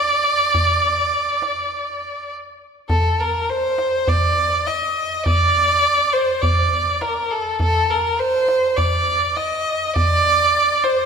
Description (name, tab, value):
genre	Arabic maqam ensemble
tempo	102 BPM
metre	4/4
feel	straight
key	D maqam hijaz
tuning	A4 = 440 Hz
part	clear violin	melody	0.0-11.1 s	A4 to Eb5+26c	-17 LUFS	right 1 dB	none
part	darbuka	percussion	0.1-11.0 s	none	-23 LUFS	equal	none
room	wet concert hall reverb, RT60 2.0 s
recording	lossy compression artefacts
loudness	-16 LUFS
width	side -6 dB against mid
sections	0.0-2.9 A section; 2.9-11.1 B section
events	break 1.7-2.9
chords	none